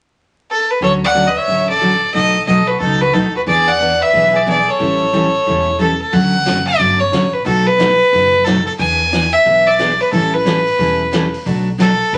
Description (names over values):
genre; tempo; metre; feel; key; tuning
country, western swing; 180 BPM; 4/4; swing 63% on 8ths; D major; A4 = 441 Hz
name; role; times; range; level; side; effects
bright fiddle; melody; 0.5-12.2 s; A4 to G#5; -16 LUFS; equal; none
warm fiddle; second line; 0.8-6.0 s; D#4 to D5; -24 LUFS; equal; none
picked steel-string acoustic guitar; accompaniment; 0.8-12.2 s; B2 to A4; -20 LUFS; equal; none
upright bass; bass; 0.8-12.2 s; E1 to E2; -27 LUFS; equal; none
vintage drum kit; drums; 6.1-12.2 s; hi-hat, kick drum, snare drum; -29 LUFS; equal; none
room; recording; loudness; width
wet studio reverb, RT60 0.6 s; vinyl crackle, nothing above 10.3 kHz; -14 LUFS; mono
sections
0.8-6.1 A section; 6.1-12.2 B section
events
none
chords
0.0 N.C.; 0.8 Dmaj7; 2.1 B7; 3.5 E7; 4.8 A7; 6.1 Dmaj7; 7.5 B7; 8.8 E7; 10.1 A7; 11.5 Bm7